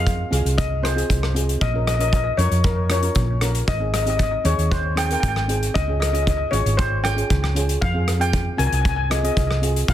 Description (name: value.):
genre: calypso.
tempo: 116 BPM.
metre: 4/4.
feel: straight.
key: unclear.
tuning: A4 = 443 Hz.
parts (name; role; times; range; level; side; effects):
steel pan; melody; 0.0-9.9 s; Bb4 to Ab5; -24 LUFS; left 2 dB; tape echo.
steel pan; accompaniment; 0.0-9.9 s; C4 to Bb4; -28 LUFS; right 2 dB; none.
hollow-body short-scale fingered electric bass; bass; 0.0-9.9 s; Ab1 to F2; -22 LUFS; equal; none.
loose indie drum kit; drums; 0.1-9.9 s; hi-hat, kick drum, rim click; -24 LUFS; equal; soft clipping on kick, soft clipping on snare.
room: little or no reverb.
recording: dense, heavily limited modern master.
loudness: -18 LUFS.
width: side -12 dB against mid.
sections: 0.0-9.9 A section.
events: none.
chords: 0.0 Fm; 1.6 Bbm; 3.7 Ab; 5.7 Db; 7.8 Fm.